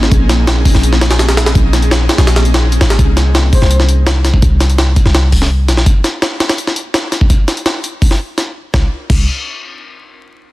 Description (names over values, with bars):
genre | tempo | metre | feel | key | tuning
drum and bass, jungle | 167 BPM | 4/4 | straight | C phrygian | A4 = 444 Hz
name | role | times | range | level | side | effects
warm 808-style bass | bass | 0.0-5.8, 8.7-9.3 s | Ab1 to C2 | -11 LUFS | equal | none
jungle sampler-style drum kit | drums | 0.0-9.2 s | crash cymbal, hi-hat, kick drum, snare drum | -12 LUFS | equal | none
breathy flute-like synth lead | melody | 3.5-3.8 s | C5 | -24 LUFS | left 2 dB | tremolo, lush chorus, dub echo
room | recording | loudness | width
digital ambience | dense, heavily limited modern master, vinyl crackle | -10 LUFS | side -18 dB against mid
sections
0.0-3.0 A section; 3.0-8.7 B section; 8.7-10.2 C section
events
drop 0.0-3.0; kick drops out 2.3-3.0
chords
0.0 Bbm11; 3.0 N.C.; 8.7 Cm11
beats
| 0.12 0.47 0.83 1.19 | 1.55 1.91 2.27 2.63 | 2.99 3.35 3.71 4.07 | 4.43 4.79 5.14 5.50 | 5.86 6.22 6.58 6.94 | 7.30 7.66 8.02 8.38 | 8.74 9.10